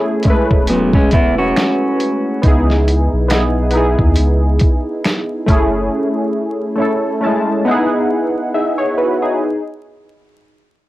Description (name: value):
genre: lo-fi hip hop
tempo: 69 BPM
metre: 4/4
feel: swing 57% on 16ths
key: unclear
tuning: A4 = 440 Hz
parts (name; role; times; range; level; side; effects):
- warm analog keys; accompaniment; 0.0-9.6 s; G#3 to A5; -16 LUFS; equal; chorus, cassette tape
- dusty soul sampler-style drum kit; drums; 0.2-5.7 s; hi-hat, kick drum, snare drum; -15 LUFS; equal; cassette tape
- soft dub sub bass; bass; 0.5-5.9 s; E1 to D#2; -16 LUFS; equal; none
- electric guitar through a small old amp; second line; 0.7-2.4 s; F#3 to F#4; -16 LUFS; equal; cassette tape, analog delay
- finger snap; percussion; 1.6-5.3 s; none; -25 LUFS; right 3 dB; none
room: light reverb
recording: home recording on cassette, vinyl crackle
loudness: -13 LUFS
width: side -16 dB against mid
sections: 0.0-9.4 A section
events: none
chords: 0.0 F#m7; 2.4 C#m7; 5.5 F#m7; 7.7 Emaj13/B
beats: 0.70 1.57 | 2.44 3.31 4.18 5.04 | 5.92 6.79 7.65 8.52